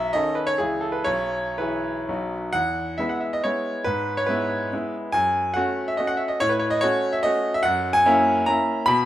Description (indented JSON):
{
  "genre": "classical, romantic triple-time dance for piano with dotted rhythms",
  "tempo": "110-154 BPM",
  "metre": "3/4",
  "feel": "rubato",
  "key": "E major",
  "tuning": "A4 = 437 Hz",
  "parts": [
    { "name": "bright concert grand piano", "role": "solo", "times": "0.0-9.1 s", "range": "B1 to B5", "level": "-20 LUFS", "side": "equal", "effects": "none" }
  ],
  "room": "moderate recital hall reverb, RT60 1.4 s",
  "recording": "none",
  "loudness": "-21 LUFS",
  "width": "side -13 dB against mid",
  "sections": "0.0-2.5 A section; 2.5-9.1 B section",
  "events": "none",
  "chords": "0.0 B9; 0.6 C#m; 1.1 E/B; 2.1 B; 2.5 E; 3.9 E/G#; 5.1 F#m; 6.4 F#m/A; 7.7 F#7",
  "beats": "0.14 0.59 | 1.06 1.58 2.08 | 2.54 2.99 3.44 | 3.85 4.29 4.73 | 5.15 5.56 5.99 | 6.41 6.83 7.25 | 7.66 8.06 8.48 | 8.89"
}